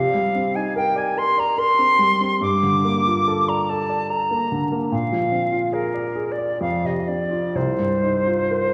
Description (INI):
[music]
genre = classical, impressionist duo for flute and grand piano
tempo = 62-75 BPM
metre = 3/4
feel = rubato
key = C minor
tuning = A4 = 440 Hz
[part]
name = silver concert flute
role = melody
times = 0.0-8.7 s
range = Bb4 to D6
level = -23 LUFS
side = equal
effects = none
[part]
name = warm baby grand piano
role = accompaniment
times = 0.0-8.7 s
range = C2 to D5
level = -25 LUFS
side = equal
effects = none
[sound]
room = wet scoring stage reverb, RT60 1.7 s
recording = recorded in a church or concert hall, vinyl crackle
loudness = -21 LUFS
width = mono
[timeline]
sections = 0.0-8.7 A section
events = none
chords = 0.0 Cm9; 2.4 Gm9; 4.9 Bb9; 6.6 F5; 7.6 Cm11